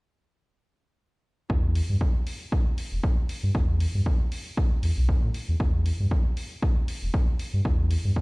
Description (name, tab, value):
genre	deep house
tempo	117 BPM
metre	4/4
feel	swing 55% on 16ths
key	E minor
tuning	A4 = 440 Hz
part	sub bass with octave	bass	1.5-8.1 s	E1 to A2	-24 LUFS	equal	sidechain pumping
part	electronic kick drum	drums	1.5-8.2 s	none	-24 LUFS	equal	none
part	electronic hi-hat	drums	1.8-8.0 s	none	-42 LUFS	left 1 dB	none
room	little or no reverb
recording	played on a big sound system in a bare room, cassette tape, stone room reverb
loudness	-23 LUFS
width	side -28 dB against mid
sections	1.5-8.2 A section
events	none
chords	none